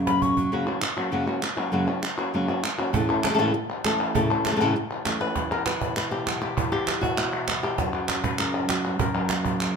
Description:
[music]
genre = flamenco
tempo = 198 BPM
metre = 4/4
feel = straight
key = unclear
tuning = A4 = 440 Hz
[part]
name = flamenco guitar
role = melody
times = 0.0-9.8 s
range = F#2 to C#5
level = -25 LUFS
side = equal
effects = none
[part]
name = bright baroque flute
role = second line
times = 0.1-0.5 s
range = B5 to C#6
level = -26 LUFS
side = left 6 dB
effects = none
[part]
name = cajon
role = percussion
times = 0.1-0.4, 2.9-9.6 s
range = none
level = -30 LUFS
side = right 6 dB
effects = none
[part]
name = palmas hand claps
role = percussion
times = 0.7-9.8 s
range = none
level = -28 LUFS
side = left 1 dB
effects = none
[sound]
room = moderate large studio reverb, RT60 1.3 s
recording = none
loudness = -22 LUFS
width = side -6 dB against mid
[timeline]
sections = 0.5-5.4 A section; 5.4-9.8 B section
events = drum fill 0.0-0.5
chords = 0.0 F#; 2.9 A; 5.4 Em; 7.8 F#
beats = 0.22 | 0.52 0.82 1.12 1.43 | 1.73 2.03 2.33 2.64 | 2.94 3.24 3.54 3.85 | 4.15 4.45 4.75 5.06 | 5.36 5.66 5.97 6.27 | 6.57 6.88 7.18 7.48 | 7.79 8.09 8.39 8.70 | 9.00 9.30 9.60

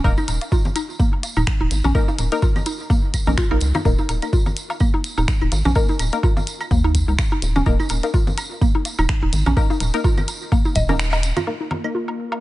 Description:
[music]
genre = minimal techno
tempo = 126 BPM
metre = 4/4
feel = swing 56% on 16ths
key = unclear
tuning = A4 = 440 Hz
[part]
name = filtered dub chord stab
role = stabs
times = 0.0-11.9 s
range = Bb3 to Bb4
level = -27 LUFS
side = left 4 dB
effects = chorus, dub echo
[part]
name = rubbery square bass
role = bass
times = 0.0-11.8 s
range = Eb1 to Eb2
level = -20 LUFS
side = equal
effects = sidechain pumping, high-pass filter
[part]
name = electronic kick drum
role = drums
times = 0.0-10.9 s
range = none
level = -18 LUFS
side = equal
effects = none
[part]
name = tambourine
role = percussion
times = 0.0-11.5 s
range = none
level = -34 LUFS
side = right 3 dB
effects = none
[part]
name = woodblock, claves and congas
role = percussion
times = 0.0-12.4 s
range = none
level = -29 LUFS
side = equal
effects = dub echo
[part]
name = mallet-like synth pluck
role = riff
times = 0.2-12.0 s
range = Bb3 to Eb5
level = -26 LUFS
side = right 1 dB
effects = chorus, sidechain pumping, digital delay
[part]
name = minimal click drum kit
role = drums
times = 0.3-11.5 s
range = finger snaps, hi-hat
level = -27 LUFS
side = left 1 dB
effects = none
[part]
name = ethereal airy pad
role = texture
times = 11.7-12.4 s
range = Bb3 to Eb6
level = -30 LUFS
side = left 2 dB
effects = ensemble chorus, built-in reverb, sidechain pumping
[sound]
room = little or no reverb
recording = nothing above 10.7 kHz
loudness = -17 LUFS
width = side -17 dB against mid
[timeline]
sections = 0.0-11.5 A section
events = break 11.0-11.5; band accent 11.0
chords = 0.0 Eb5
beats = | 0.04 0.52 0.99 1.47 | 1.95 2.42 2.90 3.38 | 3.85 4.33 4.80 5.28 | 5.76 6.23 6.71 7.19 | 7.66 8.14 8.61 9.09 | 9.57 10.04 10.52 10.99 | 11.47 11.95

